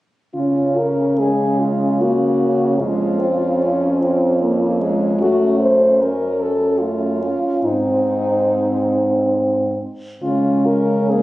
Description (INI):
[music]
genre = classical, lyrical piece for horn quartet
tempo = 69-77 BPM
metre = 3/4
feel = rubato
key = Db major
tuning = A4 = 440 Hz
[part]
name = warm French horn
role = melody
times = 0.3-11.2 s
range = Eb4 to C5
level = -20 LUFS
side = left 1 dB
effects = none
[part]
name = warm French horn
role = accompaniment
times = 0.3-11.2 s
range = Ab3 to Db4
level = -20 LUFS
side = equal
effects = none
[part]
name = dark French horn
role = second line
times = 0.4-11.2 s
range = Ab3 to Db4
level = -25 LUFS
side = right 3 dB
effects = none
[part]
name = warm French horn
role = bass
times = 0.4-11.2 s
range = F2 to Db3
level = -22 LUFS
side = right 1 dB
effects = none
[sound]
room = moderate recital hall reverb, RT60 1.6 s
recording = recorded on a phone in the room, studio reverb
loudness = -15 LUFS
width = side -17 dB against mid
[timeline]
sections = 0.3-11.2 A section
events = none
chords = 0.3 Db5; 2.8 Db/F; 5.2 Gbmmaj7; 7.6 Ab; 10.2 Db